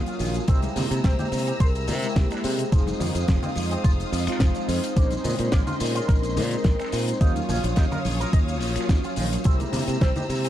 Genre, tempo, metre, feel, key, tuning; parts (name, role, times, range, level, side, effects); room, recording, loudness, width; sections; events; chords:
nu-disco, nu disco; 107 BPM; 4/4; swing 53% on 16ths; Bb minor; A4 = 441 Hz
mellow synth brass; accompaniment; 0.0-10.5 s; Gb3 to G4; -30 LUFS; equal; chorus, sidechain pumping, analog delay
warm symphonic violin section; sustained chords; 0.0-10.5 s; C5 to E6; -35 LUFS; left 1 dB; sidechain pumping
electric guitar with an envelope filter; riff; 0.1-10.5 s; F2 to Eb5; -36 LUFS; right 2 dB; lush chorus, analog delay
damped 70s drum kit; drums; 0.1-10.5 s; finger snaps, hi-hat, shaker, snare drum; -32 LUFS; left 1 dB; small room ambience
modern bright fingered electric bass; bass; 0.2-10.5 s; F1 to C3; -27 LUFS; equal; sidechain pumping
electronic kick drum; drums; 0.5-10.1 s; -20 LUFS; equal; overdrive, small room ambience
congas; percussion; 0.6-10.4 s; -33 LUFS; left 2 dB
vibraphone with soft mallets; melody; 1.0-10.5 s; G4 to F5; -33 LUFS; left 2 dB; tape echo
small room ambience; dark, warm production; -21 LUFS; side -12 dB against mid
0.0-10.5 A section
0.5 C7b13; 2.7 Fm7; 5.0 Bbm11; 7.2 Ebm9; 9.5 C7b13